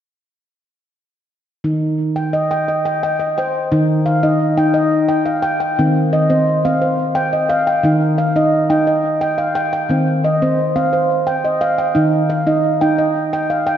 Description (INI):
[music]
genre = world meditative, meditative tuned percussion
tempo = 87 BPM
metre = 3/4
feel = straight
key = Eb major pentatonic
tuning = A4 = 439 Hz
[part]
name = handpan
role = solo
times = 1.6-13.8 s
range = Eb3 to G5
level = -14 LUFS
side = equal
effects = diffuse ambient delay
[sound]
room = wet lush hall reverb, RT60 2.8 s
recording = dreamy mix soaked in reverb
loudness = -14 LUFS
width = side -9 dB against mid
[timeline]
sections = 1.6-3.7 A section; 3.7-13.8 B section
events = none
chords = 1.6 Eb; 5.8 Cm/Eb; 7.8 Eb; 9.9 Cm/Eb; 12.0 Eb